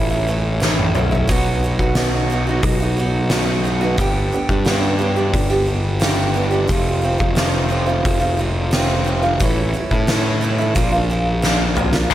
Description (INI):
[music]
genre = quiet-loud alternative rock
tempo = 89 BPM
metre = 4/4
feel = straight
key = unclear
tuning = A4 = 439 Hz
[part]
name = picked acoustic archtop guitar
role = arpeggios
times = 0.0-12.1 s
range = F2 to G4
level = -21 LUFS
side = right 3 dB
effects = none
[part]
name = fuzz picked electric bass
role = bass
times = 0.0-12.1 s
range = Eb1 to A2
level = -20 LUFS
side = equal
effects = overdrive
[part]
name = oversized low-tuned drum kit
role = drums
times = 0.6-12.1 s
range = crash cymbal, hi-hat, kick drum, snare drum, toms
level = -20 LUFS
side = equal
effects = none
[part]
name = tight distorted guitar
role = riff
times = 12.1 s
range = Eb2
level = -14 LUFS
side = left 11 dB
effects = distortion
[sound]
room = little or no reverb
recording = none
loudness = -16 LUFS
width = side -13 dB against mid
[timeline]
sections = 0.0-12.1 A section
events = drum fill 0.6-1.3, 11.4-12.1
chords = 0.0 A; 1.3 B; 4.0 G; 6.7 F; 9.4 A; 10.8 Bb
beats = 0.63 | 1.30 1.97 2.65 3.32 | 4.00 4.67 5.35 6.02 | 6.70 7.38 8.05 8.73 | 9.41 10.09 10.76 11.44 | 12.12